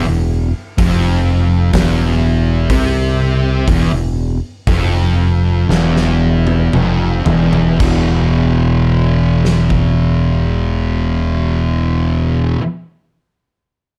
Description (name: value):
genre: stoner and doom metal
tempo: 55-64 BPM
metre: 4/4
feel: straight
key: unclear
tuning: A4 = 439 Hz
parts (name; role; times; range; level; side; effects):
- thick fuzz guitar; riff; 0.0-12.6 s; E2 to E3; -20 LUFS; equal; distortion
- thick fuzz guitar; riff; 0.0-12.6 s; E2 to E3; -20 LUFS; equal; distortion
- fingered electric bass; bass; 0.0-12.5 s; E1 to C2; -19 LUFS; equal; overdrive
- big rock drum kit; drums; 0.8-10.0 s; crash cymbal, hi-hat, kick drum, snare drum, toms; -22 LUFS; equal; none
room: small room ambience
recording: dark, warm production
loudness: -14 LUFS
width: mono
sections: 0.0-7.8 A section; 7.8-12.2 B section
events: slowing down 0.0-7.8; drum fill 5.7-7.8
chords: 0.0 Cadd11/E; 7.8 E5